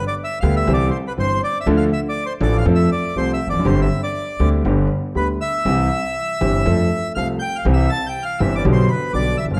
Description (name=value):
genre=tango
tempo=121 BPM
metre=4/4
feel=rubato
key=C major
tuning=A4 = 440 Hz
part: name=bandoneon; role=melody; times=0.0-9.6 s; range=B4 to A6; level=-25 LUFS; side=equal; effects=none
part: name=warm concert grand piano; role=accompaniment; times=0.4-9.6 s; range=F#1 to A4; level=-22 LUFS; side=equal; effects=none
part: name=upright bass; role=bass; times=0.4-9.6 s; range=E1 to F2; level=-23 LUFS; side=equal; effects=none
room=wet recital hall reverb, RT60 1.3 s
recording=dark, warm production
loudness=-19 LUFS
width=mono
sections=0.0-9.6 A section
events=none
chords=0.0 G; 0.7 C; 1.7 Dm; 2.7 F; 3.7 Gsus4; 4.7 G; 5.7 C; 6.7 F; 7.7 C; 8.6 G/B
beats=0.18 0.68 1.17 | 1.67 2.16 2.66 3.16 | 3.65 4.15 4.65 5.16 | 5.66 6.16 6.66 7.16 | 7.66 8.15 8.64 9.14